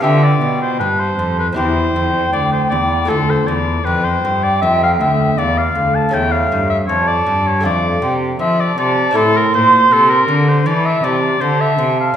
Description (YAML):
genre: classical, baroque-style sonata movement with continuo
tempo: 79 BPM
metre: 4/4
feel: straight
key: unclear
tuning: A4 = 435 Hz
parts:
  - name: clear oboe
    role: melody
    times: 0.0-12.2 s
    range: A4 to A5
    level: -17 LUFS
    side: left 3 dB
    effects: none
  - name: baroque flute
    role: second line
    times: 0.0-12.2 s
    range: E5 to C6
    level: -18 LUFS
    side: right 3 dB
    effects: none
  - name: lute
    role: accompaniment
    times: 0.0-12.2 s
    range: D2 to A4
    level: -20 LUFS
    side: left 1 dB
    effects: none
  - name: rich cello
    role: bass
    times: 0.0-12.2 s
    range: D2 to F3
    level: -19 LUFS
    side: right 1 dB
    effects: none
room: wet recital hall reverb, RT60 1.4 s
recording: recorded in a church or concert hall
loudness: -12 LUFS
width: side -9 dB against mid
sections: 0.0-12.2 A section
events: none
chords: 0.0 G7; 1.6 C/E; 3.1 Dm; 6.1 A7/E; 7.6 Dm/F; 9.2 Am